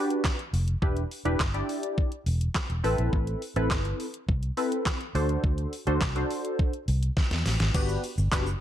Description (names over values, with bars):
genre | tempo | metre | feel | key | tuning
dance-pop | 104 BPM | 4/4 | straight | G major | A4 = 439 Hz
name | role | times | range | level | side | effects
funky polysynth comp | accompaniment | 0.0-8.5 s | B3 to D5 | -29 LUFS | equal | chorus, sidechain pumping
pop drum kit | drums | 0.1-8.6 s | crash cymbal, handclaps, hi-hat, kick drum, shaker, snare drum | -29 LUFS | equal | overdrive
vintage muted fingered electric bass | bass | 0.5-8.5 s | E1 to E2 | -27 LUFS | equal | sidechain pumping
room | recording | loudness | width
little or no reverb | dark, warm production | -25 LUFS | side -11 dB against mid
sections
0.0-7.7 A section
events
drum fill 7.2-7.7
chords
0.0 Gmaj7; 0.8 Em7; 2.8 Amadd9; 5.1 D7; 7.7 Gmaj7